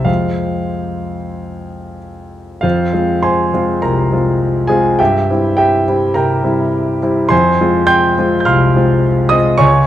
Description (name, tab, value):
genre	classical, romantic character piece for solo piano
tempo	91-106 BPM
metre	4/4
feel	rubato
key	F minor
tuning	A4 = 439 Hz
part	clear concert grand piano	solo	0.0-9.9 s	C2 to G6	-12 LUFS	equal	none
room	moderate recital hall reverb, RT60 1.7 s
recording	dark, warm production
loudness	-11 LUFS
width	side -12 dB against mid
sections	0.0-2.6 A section; 2.6-9.9 B section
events	none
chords	0.1 Fm; 5.0 C7/G; 7.3 Fm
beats	| 0.08 0.73 1.37 2.00 | 2.64 3.24 3.83 4.41 | 4.99 5.58 6.16 6.74 | 7.32 7.89 8.47 9.04 | 9.61